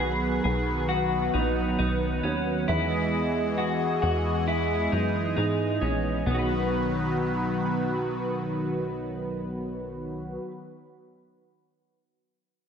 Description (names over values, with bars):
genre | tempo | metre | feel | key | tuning
dream pop | 67 BPM | 4/4 | straight | B major | A4 = 440 Hz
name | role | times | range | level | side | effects
warm analog pad | sustained chords | 0.0-10.4 s | D#3 to F#5 | -28 LUFS | right 1 dB | chorus
semi-hollow electric guitar | arpeggios | 0.0-10.5 s | B3 to B4 | -30 LUFS | left 2 dB | wide subtle chorus, tape echo
plucky analog bass | bass | 0.0-10.4 s | A#1 to G#2 | -31 LUFS | equal | none
room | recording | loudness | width
moderate plate reverb, RT60 2.5 s | dreamy mix soaked in reverb | -24 LUFS | side -7 dB against mid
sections
0.0-6.3 A section; 6.3-9.8 B section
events
none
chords
0.0 B; 2.7 Emaj7; 6.3 B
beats
0.00 0.89 1.79 | 2.68 3.58 4.47 5.37 | 6.27 7.16 8.06 8.95